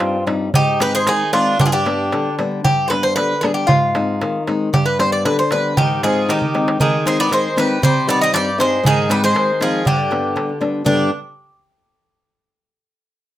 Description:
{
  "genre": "greek folk, Greek bouzouki band",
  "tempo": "116 BPM",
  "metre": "2/4",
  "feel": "straight",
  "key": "G phrygian dominant",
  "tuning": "A4 = 439 Hz",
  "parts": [
    { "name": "Greek bouzouki", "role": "melody", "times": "0.0-11.1 s", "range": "F4 to Eb5", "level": "-18 LUFS", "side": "equal", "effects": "none" },
    { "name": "Greek bouzouki", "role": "second line", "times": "0.0-2.3, 5.8-11.1 s", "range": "D3 to Ab4", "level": "-22 LUFS", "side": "right 2 dB", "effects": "slapback echo" },
    { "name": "flamenco guitar", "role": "accompaniment", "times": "0.0-11.1 s", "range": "G2 to Eb4", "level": "-20 LUFS", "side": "left 2 dB", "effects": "none" },
    { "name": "darbuka", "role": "percussion", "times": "0.0-11.1 s", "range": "none", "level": "-20 LUFS", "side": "right 2 dB", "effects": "none" }
  ],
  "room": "moderate studio reverb, RT60 0.6 s",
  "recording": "rough home demo mix",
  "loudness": "-14 LUFS",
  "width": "side -13 dB against mid",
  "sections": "0.0-2.6 A section; 2.6-10.9 A section; 10.9-11.9 B section",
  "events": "speeding up 0.0-11.9; drum fill 6.4-6.8",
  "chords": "0.0 Cm; 0.5 Ab; 1.6 G; 3.7 Ab; 4.7 G; 5.8 Ab; 7.8 Cm; 8.8 Ab; 9.9 G"
}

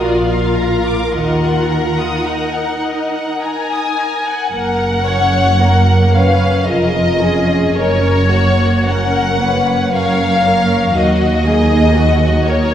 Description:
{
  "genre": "classical, slow romantic movement for string orchestra",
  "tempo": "50-60 BPM",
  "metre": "3/4",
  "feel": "rubato",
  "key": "Eb minor, F# major from 4.5 s",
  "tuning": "A4 = 442 Hz",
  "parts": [
    { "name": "warm symphonic violin section", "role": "melody", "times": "0.0-12.7 s", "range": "C#5 to Ab5", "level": "-18 LUFS", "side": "left 3 dB", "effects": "none" },
    { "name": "warm symphonic violin section", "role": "second line", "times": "0.0-12.7 s", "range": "F#4 to Eb6", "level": "-21 LUFS", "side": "left 1 dB", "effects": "none" },
    { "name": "warm symphonic viola section", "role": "accompaniment", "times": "0.0-12.7 s", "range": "F#3 to C#5", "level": "-19 LUFS", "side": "equal", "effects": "none" },
    { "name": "clear symphonic double bass section", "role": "bass", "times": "0.0-12.7 s", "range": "E#1 to Eb2", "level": "-18 LUFS", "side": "right 2 dB", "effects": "none" },
    { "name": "dark symphonic cello section", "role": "bass", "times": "0.0-12.7 s", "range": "D#2 to Eb3", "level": "-18 LUFS", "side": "right 2 dB", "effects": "none" }
  ],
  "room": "wet concert hall reverb, RT60 2.4 s",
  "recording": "none",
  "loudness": "-12 LUFS",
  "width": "side -10 dB against mid",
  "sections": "0.0-4.5 A section; 4.5-12.7 B section",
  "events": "none",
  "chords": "0.0 Bb; 1.1 Ebm; 4.5 F#; 6.7 C#/E#; 7.8 F#; 11.0 D#m"
}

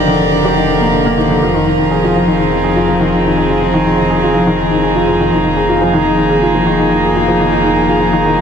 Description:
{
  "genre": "piano and strings electronica",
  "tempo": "123 BPM",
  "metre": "4/4",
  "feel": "straight",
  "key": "F dorian",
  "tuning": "A4 = 440 Hz",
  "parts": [
    { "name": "rich string quartet", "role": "sustained chords", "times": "0.0-8.4 s", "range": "F3 to D5", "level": "-14 LUFS", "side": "right 1 dB", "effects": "none" },
    { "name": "dark upright piano", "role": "riff", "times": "0.0-8.4 s", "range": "D3 to Ab4", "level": "-13 LUFS", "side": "left 1 dB", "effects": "ping-pong delay" },
    { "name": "dark detuned saw bass", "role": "bass", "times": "0.0-8.4 s", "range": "F1", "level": "-23 LUFS", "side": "right 1 dB", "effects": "none" }
  ],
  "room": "wet huge ambient reverb, RT60 3.9 s",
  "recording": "none",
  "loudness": "-10 LUFS",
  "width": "side -7 dB against mid",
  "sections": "0.0-8.4 A section",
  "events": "none",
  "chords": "0.0 Ebmaj7/F; 1.4 Fm7"
}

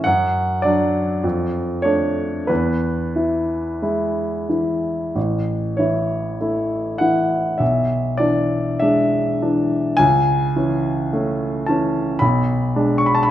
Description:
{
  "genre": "classical, romantic nocturne for solo piano",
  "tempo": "44-56 BPM",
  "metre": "4/4",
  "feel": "rubato",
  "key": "A major",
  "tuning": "A4 = 440 Hz",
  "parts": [
    { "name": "warm baby grand piano", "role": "solo", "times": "0.0-13.3 s", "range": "A1 to C#6", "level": "-17 LUFS", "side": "equal", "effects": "none" }
  ],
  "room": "moderate recital hall reverb, RT60 1.3 s",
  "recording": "none",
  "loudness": "-17 LUFS",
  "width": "side -12 dB against mid",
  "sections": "0.0-13.3 A section",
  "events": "none",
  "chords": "0.1 D/F#; 1.2 Dm/F; 2.5 E; 5.2 A; 7.6 E7/B; 10.0 A/C#; 12.2 G#dim/B"
}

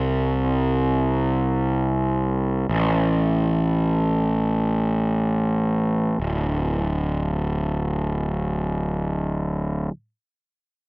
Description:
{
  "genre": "rock",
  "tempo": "free time",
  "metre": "none",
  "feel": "none",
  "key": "unclear",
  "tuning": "A4 = 440 Hz",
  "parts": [
    { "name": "fuzz picked electric bass", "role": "bass", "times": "0.0-9.9 s", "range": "D1 to C2", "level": "-20 LUFS", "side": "equal", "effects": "overdrive" }
  ],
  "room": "little or no reverb",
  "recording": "none",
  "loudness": "-20 LUFS",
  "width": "side -36 dB against mid",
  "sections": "0.0-6.2 A section; 6.2-10.0 B section",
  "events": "slowing down 0.0-6.2",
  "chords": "none"
}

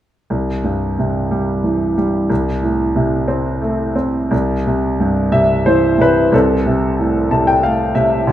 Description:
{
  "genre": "classical, lyrical solo piano",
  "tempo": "90 BPM",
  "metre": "3/4",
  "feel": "rubato",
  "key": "C major",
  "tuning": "A4 = 440 Hz",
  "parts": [
    { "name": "warm grand piano", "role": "solo", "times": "0.3-8.3 s", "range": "C2 to A5", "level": "-14 LUFS", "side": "equal", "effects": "none" }
  ],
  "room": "moderate recital hall reverb, RT60 1.4 s",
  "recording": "minimal, uncompressed stereo recording",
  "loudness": "-14 LUFS",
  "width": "side -12 dB against mid",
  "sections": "0.3-4.3 A section; 4.3-8.3 B section",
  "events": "grand piano fill 7.0-8.3",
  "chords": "0.3 C; 2.3 Am/C; 4.3 C; 6.3 C6"
}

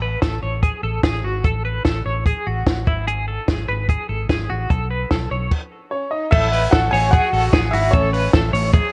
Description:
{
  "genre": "jangly indie pop",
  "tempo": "148 BPM",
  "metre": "4/4",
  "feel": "straight",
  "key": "unclear",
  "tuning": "A4 = 441 Hz",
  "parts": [
    { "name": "twelve-string electric guitar", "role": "arpeggios", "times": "0.0-8.9 s", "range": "E4 to C#5", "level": "-27 LUFS", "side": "equal", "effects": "tremolo" },
    { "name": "vintage muted fingered electric bass", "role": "bass", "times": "0.0-8.8 s", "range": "G#1 to B1", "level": "-25 LUFS", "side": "equal", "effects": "none" },
    { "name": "compact cocktail drum kit", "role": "drums", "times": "0.2-8.8 s", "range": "crash cymbal, hi-hat, kick drum, ride cymbal, snare drum", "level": "-21 LUFS", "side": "equal", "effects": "vintage 12-bit sampler grit" },
    { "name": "bright upright piano", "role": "melody", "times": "5.9-8.3 s", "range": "C#5 to G#5", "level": "-23 LUFS", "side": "equal", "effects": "tape echo" },
    { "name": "bright symphonic violin section", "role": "second line", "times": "5.9-8.3 s", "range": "C#4 to G#4", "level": "-30 LUFS", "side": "equal", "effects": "none" }
  ],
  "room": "light reverb, small room ambience",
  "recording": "cassette tape",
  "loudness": "-19 LUFS",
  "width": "mono",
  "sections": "0.0-6.3 A section; 6.3-8.9 B section",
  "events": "stop 5.5-6.3",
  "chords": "0.0 A6; 2.9 N.C.; 4.7 B9; 6.3 A6"
}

